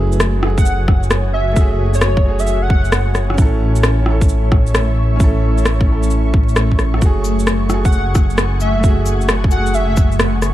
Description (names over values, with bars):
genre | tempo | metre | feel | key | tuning
future garage | 132 BPM | 4/4 | swing 67% on 16ths | F# minor | A4 = 440 Hz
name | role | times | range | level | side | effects
clear upright piano | accompaniment | 0.0-10.5 s | A3 to A4 | -24 LUFS | right 2 dB | sidechain pumping, tape echo
ethereal airy pad | sustained chords | 0.0-10.5 s | A3 to C#6 | -24 LUFS | left 1 dB | ensemble chorus, built-in reverb, tremolo, vintage 12-bit sampler grit, sidechain pumping
dark detuned saw bass | bass | 0.0-10.5 s | F#1 to A1 | -16 LUFS | equal | sidechain pumping
electronic shaker, rim click and cabasa | drums | 0.1-10.5 s | none | -20 LUFS | equal | none
airy dreamy lead | melody | 0.6-3.1, 7.9-9.9 s | C#5 to F#5 | -23 LUFS | equal | chorus, tape echo
electronic kick drum | drums | 0.6-10.1 s | none | -13 LUFS | equal | none
room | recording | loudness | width
little or no reverb | vinyl crackle | -12 LUFS | side -14 dB against mid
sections
0.0-10.5 A section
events
none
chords
0.0 F#madd9; 3.4 A; 7.0 F#madd9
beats
0.20 0.66 1.11 | 1.56 2.02 2.47 2.93 | 3.38 3.84 4.29 4.75 | 5.20 5.66 6.11 6.56 | 7.02 7.47 7.93 8.38 | 8.84 9.29 9.75 10.20